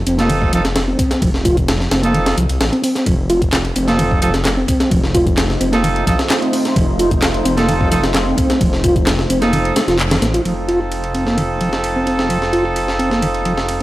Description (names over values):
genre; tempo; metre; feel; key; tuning
breakbeat, breaks; 130 BPM; 4/4; straight; unclear; A4 = 440 Hz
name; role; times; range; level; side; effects
detuned saw bass; bass; 0.0-13.8 s; F1 to C2; -21 LUFS; equal; none
mellow tonewheel organ; riff; 0.1-13.5 s; Eb3 to F4; -18 LUFS; equal; chorus vibrato, stopped rotary speaker, low-pass filter, tape echo
breakbeat sampler-style drum kit; drums; 0.1-13.8 s; hi-hat, kick drum, ride cymbal, snare drum; -19 LUFS; equal; high-pass filter on kick, high-pass filter on snare, high-pass filter on cymbals, high-pass filter on hats
house drum kit; drums; 0.1-13.8 s; handclaps, hi-hat; -25 LUFS; left 1 dB; overdrive, low-pass filter on hats, low-pass filter on snare
warm horn section; stabs; 0.2-13.8 s; C4 to A4; -20 LUFS; right 2 dB; tape echo
deep dark ambient pad; sustained chords; 4.9-13.8 s; A3 to C6; -25 LUFS; equal; chorus, built-in reverb, vintage 12-bit sampler grit, sidechain pumping
room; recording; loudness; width
light reverb; dry, gritty hardware recording; -13 LUFS; side -16 dB against mid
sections
0.0-10.5 A section; 10.5-13.8 B section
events
band accent 10.0; filter sweep on tonewheel organ 10.5-13.8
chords
0.0 F7